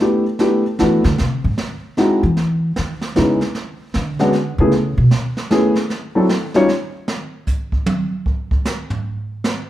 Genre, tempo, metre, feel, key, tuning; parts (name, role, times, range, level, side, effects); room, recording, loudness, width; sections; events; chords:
jazz piano trio; 153 BPM; 3/4; swing 64% on 8ths; A4 = 440 Hz
dark grand piano; melody; 0.0-6.7 s; F#3 to C#5; -15 LUFS; left 1 dB
jazz brush drum kit; drums; 0.0-9.6 s; brushed snare drum, hi-hat, kick drum, snare drum, toms; -22 LUFS; right 1 dB
upright bass; bass; 0.8-5.1 s; G#2 to E3; -18 LUFS; equal
moderate large studio reverb, RT60 1.1 s; band playing live in one room; -16 LUFS; side -13 dB against mid
0.0-7.1 A section; 7.1-9.7 A section
upright bass solo 0.0-7.1; drum solo 7.1-9.7
0.0 Dsus2; 1.2 G#aug; 2.4 C#madd9; 3.5 E13 (rootless); 4.7 Aadd9 (rootless); 5.9 N.C.